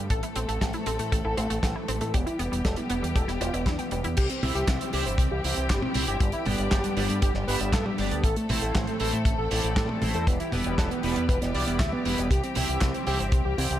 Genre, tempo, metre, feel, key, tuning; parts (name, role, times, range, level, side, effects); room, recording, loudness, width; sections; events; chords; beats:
italo disco; 118 BPM; 4/4; straight; A minor; A4 = 441 Hz
wide unison lead; melody; 0.0-13.8 s; G3 to E5; -30 LUFS; equal; cassette tape, digital delay
muted studio string section; sustained chords; 0.0-13.8 s; D3 to A4; -34 LUFS; left 1 dB
wide unison pluck; arpeggios; 0.0-4.1 s; G3 to G5; -36 LUFS; equal; digital delay
fingered electric bass with an envelope filter; bass; 0.0-13.8 s; E1 to A2; -30 LUFS; equal; tube saturation
damped 70s drum kit; drums; 0.1-13.8 s; crash cymbal, handclaps, hi-hat, snare drum, toms; -31 LUFS; right 2 dB; small room ambience, gated reverb
kick drum; drums; 0.1-13.4 s; -26 LUFS; equal; small room ambience
chorused polysynth; stabs; 4.4-13.8 s; G2 to G5; -33 LUFS; right 1 dB
little or no reverb; -24 LUFS; side -12 dB against mid
0.0-4.2 A section; 4.2-13.8 B section
0.1 Am; 2.1 Em; 4.2 C; 6.2 G; 8.2 Am; 10.3 Em; 12.3 C
| 0.10 0.61 1.12 1.63 | 2.14 2.65 3.15 3.66 | 4.17 4.68 5.19 5.70 | 6.21 6.71 7.22 7.73 | 8.24 8.75 9.26 9.77 | 10.27 10.78 11.29 11.80 | 12.31 12.82 13.32